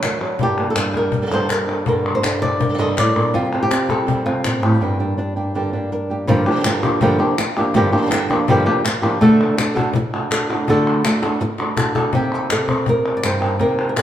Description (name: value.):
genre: flamenco.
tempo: 164 BPM.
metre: 4/4.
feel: straight.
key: G minor.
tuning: A4 = 440 Hz.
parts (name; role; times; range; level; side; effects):
flamenco guitar; melody; 0.0-14.0 s; G2 to Eb5; -18 LUFS; equal; none.
flamenco guitar; stabs; 0.0-14.0 s; G2 to A4; -25 LUFS; right 2 dB; none.
cajon; percussion; 0.0-14.0 s; none; -25 LUFS; left 4 dB; none.
palmas hand claps; percussion; 0.0-14.0 s; none; -24 LUFS; left 2 dB; none.
room: wet large studio reverb, RT60 1.5 s.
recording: band playing live in one room.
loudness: -16 LUFS.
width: side -11 dB against mid.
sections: 0.0-6.3 A section; 6.3-12.1 B section; 12.1-14.0 C section.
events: break 4.8-6.3; drum fill 11.2-12.1.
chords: 0.4 Gmadd9; 3.3 Cm; 4.8 Gm; 6.3 Gm7; 9.2 D; 12.1 Cm7.